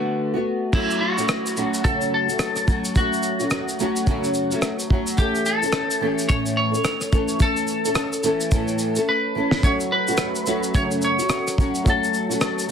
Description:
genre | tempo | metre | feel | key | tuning
acoustic pop | 108 BPM | 4/4 | swing 60% on 16ths | unclear | A4 = 443 Hz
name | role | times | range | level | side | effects
clean lap steel guitar | melody | 0.0-12.7 s | D4 to C#5 | -25 LUFS | left 1 dB | ping-pong delay
nylon-string guitar | accompaniment | 0.0-12.7 s | F#2 to A4 | -23 LUFS | equal | double-tracked left and right
cloth-damped thuddy drum kit | drums | 0.7-12.7 s | crash cymbal, kick drum, rim click, shaker, snare drum | -23 LUFS | equal | none
clear upright piano | accompaniment | 9.6-12.7 s | A3 to C#5 | -33 LUFS | left 3 dB | none
room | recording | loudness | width
moderate studio ambience, RT60 0.5 s | dense, heavily limited modern master | -19 LUFS | side -7 dB against mid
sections
0.7-12.7 A section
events
drum fill 9.1-9.6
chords
0.0 D6; 0.7 F#m; 5.2 A; 9.6 F#m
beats
0.18 | 0.74 1.29 1.85 2.40 | 2.96 3.52 4.07 4.63 | 5.19 5.74 6.30 6.86 | 7.41 7.97 8.52 9.08 | 9.64 10.19 10.75 11.30 | 11.86 12.42

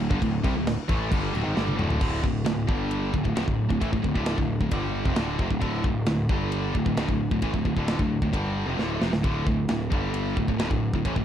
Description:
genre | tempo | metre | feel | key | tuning
heavy metal | 133 BPM | 4/4 | straight | D minor | A4 = 439 Hz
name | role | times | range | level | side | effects
high-gain distorted guitar | riff | 0.0-11.2 s | D2 to A3 | -27 LUFS | equal | distortion
fuzz picked electric bass | bass | 0.0-11.2 s | D1 to C2 | -29 LUFS | equal | overdrive
tight metal drum kit | drums | 0.1-11.2 s | crash cymbal, kick drum, ride cymbal, snare drum, toms | -28 LUFS | equal | none
room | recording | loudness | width
light reverb | dark, warm production | -23 LUFS | side -10 dB against mid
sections
0.0-2.0 A section; 2.0-11.2 B section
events
drum fill 1.6-2.0, 8.8-9.2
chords
0.0 D5; 2.7 G5; 3.1 Dm; 6.3 G5; 6.8 Dm; 9.9 G5; 10.4 D5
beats
| 0.21 0.67 1.12 1.57 | 2.02 2.47 2.92 3.37 | 3.82 4.27 4.72 5.17 | 5.62 6.08 6.53 6.98 | 7.43 7.88 8.33 8.78 | 9.23 9.69 10.14 10.59 | 11.04

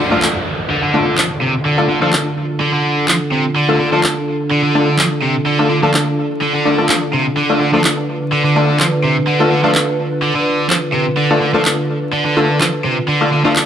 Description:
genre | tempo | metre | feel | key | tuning
breakbeat, breaks | 126 BPM | 4/4 | swing 53% on 16ths | D dorian | A4 = 440 Hz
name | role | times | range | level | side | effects
warbly tape-like pad | sustained chords | 0.5-13.7 s | D3 to B4 | -19 LUFS | right 1 dB | chorus, built-in reverb
cranked stack guitar | riff | 0.0-13.5 s | C3 to F3 | -17 LUFS | right 1 dB | overdrive, low-pass filter, tape echo
downlifter | sound effects | 0.0-3.6 s | none | -24 LUFS | right 1 dB | none
orchestra-hit-like synth stab | stabs | 0.1-13.6 s | A3 to A4 | -18 LUFS | left 2 dB | built-in reverb, tape echo
electronic handclaps | drums | 0.2-13.7 s | none | -16 LUFS | equal | none
room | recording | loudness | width
wet studio reverb, RT60 0.7 s | vinyl crackle | -13 LUFS | side -9 dB against mid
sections
0.0-13.7 A section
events
none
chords
0.0 Dm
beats
0.23 0.70 1.18 | 1.65 2.13 2.61 3.08 | 3.56 4.04 4.51 4.99 | 5.46 5.94 6.42 6.89 | 7.37 7.84 8.32 8.80 | 9.27 9.75 10.23 10.70 | 11.18 11.65 12.13 12.61 | 13.08 13.56

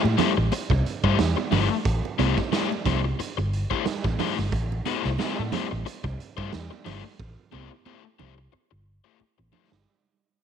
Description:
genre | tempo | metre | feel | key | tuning
funk | 90 BPM | 4/4 | swing 56% on 16ths | A minor | A4 = 444 Hz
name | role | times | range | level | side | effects
crunchy overdriven guitar | accompaniment | 0.0-9.8 s | A3 to C5 | -28 LUFS | left 11 dB | none
vintage muted fingered electric bass | bass | 0.0-9.8 s | G1 to A2 | -26 LUFS | equal | none
congas | percussion | 0.1-9.7 s | none | -31 LUFS | right 11 dB | none
raw garage drum kit | drums | 0.2-9.9 s | hi-hat, kick drum, snare drum | -29 LUFS | right 5 dB | none
room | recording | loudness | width
light reverb, small room ambience | 1960s-style stereo with parts hard left and right, tape saturation | -23 LUFS | side -8 dB against mid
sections
0.0-9.9 A section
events
fade-out 0.0-9.9; drum fill 7.2-9.9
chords
0.0 Am7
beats
0.52 1.18 | 1.85 2.52 3.19 3.86 | 4.52 5.19 5.86 6.53 | 7.20 7.86 8.53 9.20

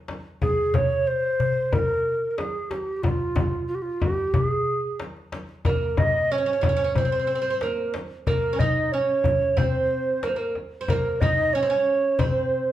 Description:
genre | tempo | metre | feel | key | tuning
Turkish makam ensemble | 92 BPM | 4/4 | straight | unclear | A4 = 440 Hz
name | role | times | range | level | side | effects
darbuka | percussion | 0.1-12.4 s | none | -28 LUFS | left 2 dB | none
frame drum | percussion | 0.1-12.3 s | none | -27 LUFS | left 2 dB | none
mellow hollow tenor recorder | melody | 0.4-12.7 s | F4 to Eb5 | -23 LUFS | right 2 dB | none
oud | second line | 5.7-12.7 s | Bb3 to Eb4 | -30 LUFS | right 4 dB | none
room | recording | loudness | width
wet large studio reverb, RT60 0.9 s | band playing live in one room | -21 LUFS | side -12 dB against mid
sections
0.0-12.7 A section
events
none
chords
none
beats
| 0.42 1.07 1.73 2.38 | 3.03 3.69 4.34 5.00 | 5.65 6.30 6.96 7.61 | 8.27 8.92 9.57 10.23 | 10.88 11.53 12.19

